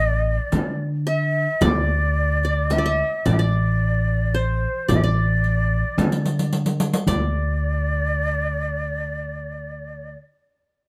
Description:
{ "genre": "Arabic maqam ensemble", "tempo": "110 BPM (eighths)", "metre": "10/8", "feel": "straight", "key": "unclear", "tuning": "A4 = 440 Hz", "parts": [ { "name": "breathy ney", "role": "melody", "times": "0.0-10.1 s", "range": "C5 to E5-48c", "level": "-28 LUFS", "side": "equal", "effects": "none" }, { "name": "qanun", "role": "second line", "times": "0.0-10.2 s", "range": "C5 to E5-50c", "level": "-31 LUFS", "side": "equal", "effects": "none" }, { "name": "upright bass", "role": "bass", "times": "0.0-10.1 s", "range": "A1 to D3", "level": "-24 LUFS", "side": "equal", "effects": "none" }, { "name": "frame drum", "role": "percussion", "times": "0.5-7.6 s", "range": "none", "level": "-26 LUFS", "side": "equal", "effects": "none" }, { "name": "riq", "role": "percussion", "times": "0.5-7.6 s", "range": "none", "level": "-28 LUFS", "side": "equal", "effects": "none" } ], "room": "moderate studio reverb, RT60 0.5 s", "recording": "none", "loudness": "-22 LUFS", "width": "mono", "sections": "0.0-7.1 A section; 7.1-10.9 B section", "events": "drum fill 6.0-7.1", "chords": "none", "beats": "0.53 1.07 | 1.62 2.17 2.71 3.25 3.80 4.34 4.89 5.43 5.98 6.53 | 7.07 7.62 8.16 8.71 9.25 9.79" }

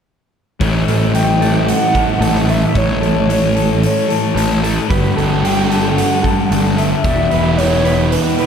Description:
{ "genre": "rock, shoegaze and dream pop", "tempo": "112 BPM", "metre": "4/4", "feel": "straight", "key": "A mixolydian", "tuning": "A4 = 440 Hz", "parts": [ { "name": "electric guitar through a small old amp", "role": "arpeggios", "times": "0.6-8.5 s", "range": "A4 to D5", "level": "-23 LUFS", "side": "equal", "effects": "wide subtle chorus, slapback echo" }, { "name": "biting overdriven guitar", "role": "riff", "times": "0.6-8.5 s", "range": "A2 to G4", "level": "-19 LUFS", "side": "right 9 dB", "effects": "reverse reverb" }, { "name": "thick fuzz guitar", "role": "riff", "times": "0.6-8.5 s", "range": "E2 to A3", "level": "-18 LUFS", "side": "left 9 dB", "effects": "distortion, analog chorus" }, { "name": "fuzz picked electric bass", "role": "bass", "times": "0.6-8.2 s", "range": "E1 to A1", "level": "-18 LUFS", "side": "equal", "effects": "overdrive" }, { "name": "huge arena drum kit", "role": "drums", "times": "0.6-8.5 s", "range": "hi-hat, kick drum", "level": "-24 LUFS", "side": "right 1 dB", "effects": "none" }, { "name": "pure sine lead", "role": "melody", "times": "1.1-8.5 s", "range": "B4 to G5", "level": "-19 LUFS", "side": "left 1 dB", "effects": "chorus, slapback echo" } ], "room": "moderate scoring stage reverb, RT60 1.9 s, small room ambience", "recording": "none", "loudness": "-12 LUFS", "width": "side -7 dB against mid", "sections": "0.6-8.5 A section", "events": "none", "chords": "0.6 A7; 4.9 Gsus2; 7.0 Em7", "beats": "| 0.60 1.14 1.68 2.21 | 2.75 3.29 3.82 4.36 | 4.90 5.43 5.97 6.51 | 7.05 7.58 8.12" }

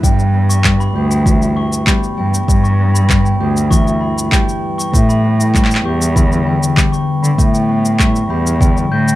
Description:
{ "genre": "folktronica", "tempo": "98 BPM", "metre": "4/4", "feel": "straight", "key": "G lydian", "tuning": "A4 = 440 Hz", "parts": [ { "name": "glockenspiel with rubber mallets", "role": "second line", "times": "0.0-9.2 s", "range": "G5 to G6", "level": "-22 LUFS", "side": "right 1 dB", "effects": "tape echo" }, { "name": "concert harp", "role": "arpeggios", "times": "0.0-9.2 s", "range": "G2 to G4", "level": "-18 LUFS", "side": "left 3 dB", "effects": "tape echo" }, { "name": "dark cello", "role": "bass", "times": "0.0-9.2 s", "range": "D2 to D3", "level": "-15 LUFS", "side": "equal", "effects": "none" }, { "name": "electronic cabasa and handclaps", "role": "drums", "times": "0.0-9.2 s", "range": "none", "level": "-19 LUFS", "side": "equal", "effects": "none" }, { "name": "electronic kick drum", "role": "drums", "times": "0.0-8.7 s", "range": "none", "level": "-14 LUFS", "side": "equal", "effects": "none" } ], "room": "little or no reverb", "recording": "dry, close 1970s-style studio recording", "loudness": "-11 LUFS", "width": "side -16 dB against mid", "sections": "0.0-9.2 A section", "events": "none", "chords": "0.0 G6; 4.9 A9sus4", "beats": "| 0.04 0.65 1.26 1.87 | 2.49 3.10 3.71 4.32 | 4.93 5.55 6.16 6.77 | 7.38 8.00 8.61" }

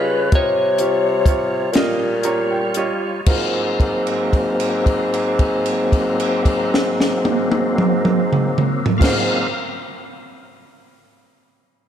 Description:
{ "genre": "slow blues", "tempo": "38-45 BPM (dotted quarters)", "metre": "12/8", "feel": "straight", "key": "Ab mixolydian", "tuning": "A4 = 437 Hz", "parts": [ { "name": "electric guitar through a small old amp", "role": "melody", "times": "0.0-1.2 s", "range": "Cb5 to Db5", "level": "-20 LUFS", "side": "left 4 dB", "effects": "none" }, { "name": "clear upright piano", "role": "accompaniment", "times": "0.0-9.5 s", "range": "F4 to Bb5", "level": "-25 LUFS", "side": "right 4 dB", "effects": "slapback echo" }, { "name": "bright tonewheel organ", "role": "sustained chords", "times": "0.0-9.5 s", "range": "Gb3 to F5", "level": "-24 LUFS", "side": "left 1 dB", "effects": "slow rotary speaker, chorus vibrato" }, { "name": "clear bassoon", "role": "bass", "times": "0.0-9.5 s", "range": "Ab2 to Db3", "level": "-21 LUFS", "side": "equal", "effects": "none" }, { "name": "compact cocktail drum kit", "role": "drums", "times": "0.3-9.3 s", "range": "crash cymbal, hi-hat, kick drum, snare drum, toms", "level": "-19 LUFS", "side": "equal", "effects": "none" } ], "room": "moderate lush hall reverb, RT60 2.9 s", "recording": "big arena sound", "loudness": "-16 LUFS", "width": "side -9 dB against mid", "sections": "0.0-3.3 A section; 3.3-9.6 B section", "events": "slowing down 0.0-3.3; clean electric guitar solo 0.0-3.3; upright piano fill 1.7-3.3; held note 3.3-9.0", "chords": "0.0 Eb9; 3.3 Ab13", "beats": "0.32 1.73 | 3.26 4.85 6.45 8.05" }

